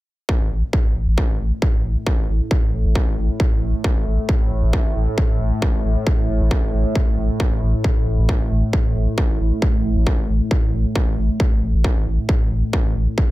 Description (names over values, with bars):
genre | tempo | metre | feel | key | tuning
driving peak-time techno | 135 BPM | 4/4 | straight | unclear | A4 = 437 Hz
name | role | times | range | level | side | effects
analog drone | drone | 0.7-13.3 s | A2 | -25 LUFS | equal | chorus, phaser, sidechain pumping
electronic kick drum | drums | 0.3-13.3 s | none | -19 LUFS | equal | distortion
saturated sub bass | bass | 0.4-13.1 s | A1 | -20 LUFS | equal | sidechain pumping, low-pass filter
room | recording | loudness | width
little or no reverb | none | -17 LUFS | side -17 dB against mid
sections
0.3-13.3 A section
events
none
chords
none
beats
| 0.29 0.73 1.18 1.62 | 2.07 2.51 2.96 3.40 | 3.84 4.29 4.73 5.18 | 5.62 6.07 6.51 6.96 | 7.40 7.84 8.29 8.73 | 9.18 9.62 10.07 10.51 | 10.96 11.40 11.84 12.29 | 12.73 13.18